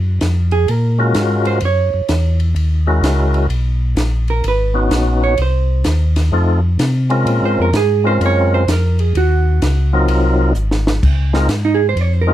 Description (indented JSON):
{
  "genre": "soul jazz organ trio",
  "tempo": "128 BPM",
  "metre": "4/4",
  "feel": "swing 66% on 8ths",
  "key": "unclear",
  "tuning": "A4 = 438 Hz",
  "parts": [
    { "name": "mellow tonewheel organ", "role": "bass", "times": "0.0-12.3 s", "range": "Ab1 to C3", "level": "-15 LUFS", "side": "equal", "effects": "slow rotary speaker" },
    { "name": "compact cocktail drum kit", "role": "drums", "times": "0.2-12.1 s", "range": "crash cymbal, hi-hat, kick drum, ride cymbal, snare drum", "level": "-22 LUFS", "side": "equal", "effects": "none" },
    { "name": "vintage hollow-body jazz guitar", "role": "accompaniment", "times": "0.5-12.3 s", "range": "Eb4 to Db5", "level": "-19 LUFS", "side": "right 7 dB", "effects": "none" },
    { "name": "percussive tonewheel organ", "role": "melody", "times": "1.0-12.3 s", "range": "Gb3 to Bb4", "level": "-17 LUFS", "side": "left 2 dB", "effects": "slow rotary speaker" }
  ],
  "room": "light reverb",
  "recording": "dark, warm production",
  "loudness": "-13 LUFS",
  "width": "side -12 dB against mid",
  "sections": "0.0-11.0 A section; 11.0-12.3 A section",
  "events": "hollow-body jazz guitar solo 0.0-12.3; drum fill 10.6-11.0",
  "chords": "0.0 Gbmaj7; 1.6 Gb7; 3.5 Bmaj9; 5.4 Cm; 6.3 F7; 7.3 Bbm7; 9.1 Ebm7; 10.1 Ab13; 11.0 Dbmaj13"
}